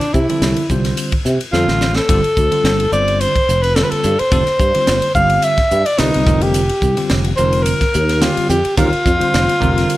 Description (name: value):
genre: electric jazz fusion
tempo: 108 BPM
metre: 4/4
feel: swing 54% on 16ths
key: unclear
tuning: A4 = 440 Hz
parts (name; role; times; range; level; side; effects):
- breathy alto saxophone; melody; 0.0-10.0 s; D4 to F5; -16 LUFS; equal; slapback echo
- bell-like tine electric piano; accompaniment; 0.0-10.0 s; D3 to C5; -22 LUFS; equal; medium stereo tremolo
- sustaining fretless electric bass; bass; 0.0-9.8 s; F1 to C3; -18 LUFS; equal; ensemble chorus
- crisp fusion drum kit; drums; 0.0-10.0 s; hi-hat, kick drum, ride cymbal, snare drum; -20 LUFS; equal; none
room: light reverb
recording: none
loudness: -13 LUFS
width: side -16 dB against mid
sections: 0.0-10.0 A section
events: drum fill 1.5-2.1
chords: 0.0 Csus4; 2.1 G9sus4; 6.3 Fsus4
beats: 0.42 0.97 1.53 | 2.09 2.64 3.20 3.76 | 4.32 4.87 5.43 5.99 | 6.55 7.11 7.66 8.22 | 8.78 9.34 9.90